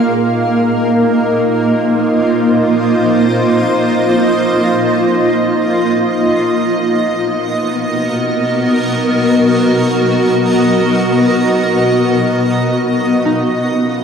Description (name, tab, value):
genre	ambient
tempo	free time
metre	none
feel	none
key	unclear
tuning	A4 = 440 Hz
part	granular cloud pad	sustained chords	0.0-14.0 s	Bb3 to F5	-12 LUFS	equal	built-in reverb, shimmer reverb
part	concert harp	arpeggios	0.0-0.5, 13.3-14.0 s	Eb4 to F4	-24 LUFS	equal	ping-pong delay, shimmer reverb
part	glass harmonica	texture	0.0-14.0 s	Eb4 to F5	-22 LUFS	equal	shimmer reverb
part	clear studio cello section	bass	12.8-14.0 s	none	barely audible	none	none
room	wet cathedral reverb, RT60 5.3 s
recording	dark, warm production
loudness	-11 LUFS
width	side -7 dB against mid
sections	0.0-12.8 A section; 12.8-14.0 B section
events	fade-out on glass harmonica 0.0-12.8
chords	0.0 Bbsus24; 6.1 Cbmaj7; 12.8 Dbadd9